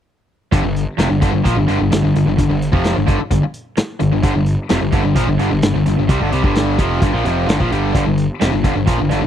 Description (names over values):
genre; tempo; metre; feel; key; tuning
classic rock; 129 BPM; 4/4; straight; G minor; A4 = 440 Hz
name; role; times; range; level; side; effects
crunchy overdriven guitar; riff; 0.5-9.3 s; F2 to G3; -20 LUFS; right 10 dB; none
tight distorted guitar; riff; 0.5-9.3 s; F2 to G3; -19 LUFS; left 8 dB; distortion
fuzz picked electric bass; bass; 0.5-9.3 s; F1 to C2; -20 LUFS; equal; overdrive
vintage drum kit; drums; 0.5-9.2 s; hi-hat, kick drum, snare drum; -18 LUFS; equal; none
room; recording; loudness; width
small room reverb; dry, close 1970s-style studio recording; -14 LUFS; side -10 dB against mid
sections
0.5-9.3 A section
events
none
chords
0.5 Gm